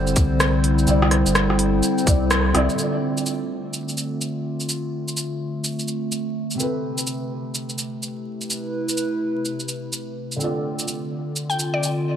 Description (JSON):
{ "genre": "future garage", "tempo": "126 BPM", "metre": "4/4", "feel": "swing 63% on 16ths", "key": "D dorian", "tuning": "A4 = 438 Hz", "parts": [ { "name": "felt-muted upright piano", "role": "accompaniment", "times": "0.0-12.2 s", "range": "C3 to D5", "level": "-28 LUFS", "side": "right 1 dB", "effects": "lush chorus, sidechain pumping, diffuse ambient delay" }, { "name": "warbly tape-like pad", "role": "sustained chords", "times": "0.0-12.2 s", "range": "C3 to C5", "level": "-24 LUFS", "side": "equal", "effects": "chorus, built-in reverb, sidechain pumping" }, { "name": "warm sub bass", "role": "bass", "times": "0.0-2.7 s", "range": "G1 to C2", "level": "-22 LUFS", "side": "equal", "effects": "sidechain pumping" }, { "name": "organic electronic drum kit", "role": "drums", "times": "0.1-11.9 s", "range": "hi-hat, rim click, shaker", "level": "-24 LUFS", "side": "equal", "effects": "none" }, { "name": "electronic kick drum", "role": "drums", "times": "0.2-2.2 s", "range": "none", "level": "-18 LUFS", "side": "equal", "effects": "none" }, { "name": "mallet-like synth pluck", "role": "melody", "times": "11.5-12.0 s", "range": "D5 to G5", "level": "-25 LUFS", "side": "left 3 dB", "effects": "chorus, diffuse ambient delay" } ], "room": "wet plate reverb, RT60 2.2 s", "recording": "dreamy mix soaked in reverb, vinyl crackle", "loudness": "-20 LUFS", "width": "side -9 dB against mid", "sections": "0.0-2.8 A section; 2.8-12.2 B section", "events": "band accent 2.3", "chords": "0.0 Cadd9; 2.8 Dm7; 6.6 Amadd9/C; 10.4 Dm7" }